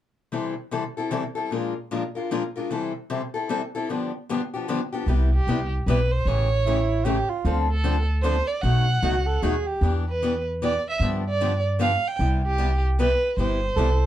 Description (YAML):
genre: acoustic string swing (jazz manouche)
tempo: 152 BPM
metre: 3/4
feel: swing 63% on 8ths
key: C major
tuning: A4 = 438 Hz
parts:
  - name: picked steel-string acoustic guitar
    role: accompaniment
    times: 0.3-13.9 s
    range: G2 to Bb4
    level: -27 LUFS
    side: left 4 dB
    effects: none
  - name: upright bass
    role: bass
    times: 5.1-14.1 s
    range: G1 to G2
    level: -23 LUFS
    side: equal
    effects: none
  - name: warm violin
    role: melody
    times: 5.3-14.1 s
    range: G4 to G5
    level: -26 LUFS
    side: right 3 dB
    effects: none
  - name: breathy soprano saxophone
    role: second line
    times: 6.7-9.9, 13.8-14.1 s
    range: E4 to A4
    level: -26 LUFS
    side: right 4 dB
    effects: none
room: light reverb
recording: dark, warm production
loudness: -22 LUFS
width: side -12 dB against mid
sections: 0.3-5.1 A section; 5.1-14.1 B section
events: none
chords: 0.3 C6; 1.5 Bb7; 2.7 C6; 3.9 G7; 5.1 Cmaj7; 6.3 A7; 7.4 Dm7; 8.6 B7; 9.8 Em7; 11.0 G7; 12.2 Cmaj7